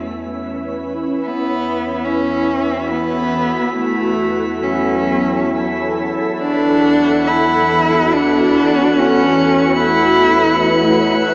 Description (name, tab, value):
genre	ambient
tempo	71 BPM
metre	3/4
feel	straight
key	unclear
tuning	A4 = 439 Hz
part	rich cello	melody	0.0-11.0 s	A3 to E4	-16 LUFS	equal	tape echo
part	ethereal airy pad	sustained chords	0.0-11.3 s	E3 to C#5	-18 LUFS	equal	ensemble chorus, built-in reverb, phaser
part	warm sub bass	bass	0.0-11.3 s	E2	-30 LUFS	equal	none
part	organ-like drone	drone	0.0-11.3 s	E3 to E4	-24 LUFS	equal	ensemble chorus, built-in reverb
part	drifting glass-harmonics texture	texture	0.0-11.3 s	E5 to F#5	-24 LUFS	equal	chorus, built-in reverb
room	wet plate reverb, RT60 3.7 s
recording	echo-heavy mix, small speaker sound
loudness	-13 LUFS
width	side -26 dB against mid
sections	0.0-11.3 A section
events	fade-in on ambient pad 0.0-11.3; fade-in on synth drone 0.0-11.3; fade-in on synth texture 0.0-11.3; fade-in on cello 0.0-11.3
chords	0.0 A/E; 1.3 Esus4; 3.8 F#m7/E; 6.4 A/E